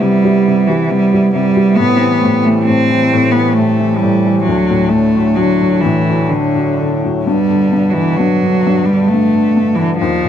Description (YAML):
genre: celtic folk, Celtic slow air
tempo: 66 BPM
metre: 3/4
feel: rubato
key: G major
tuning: A4 = 440 Hz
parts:
  - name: rich cello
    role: melody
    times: 0.0-10.3 s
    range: D3 to C4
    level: -12 LUFS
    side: right 2 dB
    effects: none
  - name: felt-muted upright piano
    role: accompaniment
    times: 0.0-10.3 s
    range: D2 to G3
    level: -17 LUFS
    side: left 7 dB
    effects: none
  - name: pedal harmonium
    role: sustained chords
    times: 0.0-10.3 s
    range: A2 to E4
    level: -21 LUFS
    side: right 2 dB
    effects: none
room: light reverb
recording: close, detailed microphones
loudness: -10 LUFS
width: side -9 dB against mid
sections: 0.0-10.3 A section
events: none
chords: 0.0 Cmaj7; 1.8 Am7; 4.5 D; 7.3 G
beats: 0.02 0.91 | 1.79 2.68 3.56 | 4.46 5.38 6.32 | 7.26 8.20 9.11 | 10.00